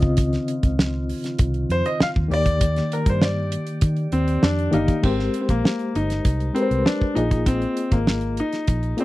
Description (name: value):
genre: lush 1970s-style soul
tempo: 99 BPM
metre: 4/4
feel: straight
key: Eb major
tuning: A4 = 438 Hz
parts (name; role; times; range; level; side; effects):
- reed electric piano; accompaniment; 0.0-9.0 s; Db3 to F5; -26 LUFS; left 2 dB; overdrive, fast tremolo
- mellow tonewheel organ; sustained chords; 0.0-5.0 s; Eb3 to D5; -31 LUFS; right 2 dB; slow rotary speaker
- vintage muted fingered electric bass; bass; 0.0-8.9 s; G1 to Eb3; -24 LUFS; equal; none
- damped 70s drum kit; drums; 0.0-9.0 s; crash cymbal, hi-hat, kick drum, snare drum; -21 LUFS; equal; none
- clear grand piano; melody; 1.7-9.0 s; Bb3 to F5; -24 LUFS; left 1 dB; none
room: little or no reverb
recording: dry, close 1970s-style studio recording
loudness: -19 LUFS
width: side -17 dB against mid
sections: 0.0-5.0 A section; 5.0-9.0 B section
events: grand piano solo 0.0-5.0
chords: 0.0 Dbmaj9; 2.3 Ebmaj7; 5.0 Abmaj9; 7.2 Bb7sus4